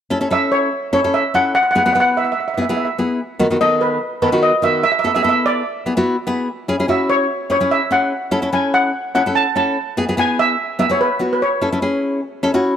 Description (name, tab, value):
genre	calypso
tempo	146 BPM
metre	4/4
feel	swing 54% on 16ths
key	A major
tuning	A4 = 440 Hz
part	nylon-string guitar	accompaniment	0.1-12.7 s	D#3 to B4	-19 LUFS	left 1 dB	none
part	steel pan	melody	0.3-12.6 s	B4 to A5	-16 LUFS	right 1 dB	none
room	light reverb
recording	none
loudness	-15 LUFS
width	side -9 dB against mid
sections	0.0-12.8 A section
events	none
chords	0.0 A; 1.5 E; 3.2 B7/D#; 4.8 Esus4; 5.7 E7; 6.5 C#m; 8.1 A6; 9.8 Eadd9; 11.4 A6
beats	0.32 0.73 1.14 | 1.55 1.96 2.37 2.78 | 3.19 3.60 4.01 4.42 | 4.83 5.25 5.66 6.07 | 6.48 6.89 7.30 7.71 | 8.12 8.53 8.94 9.35 | 9.76 10.18 10.59 11.00 | 11.41 11.82 12.23 12.65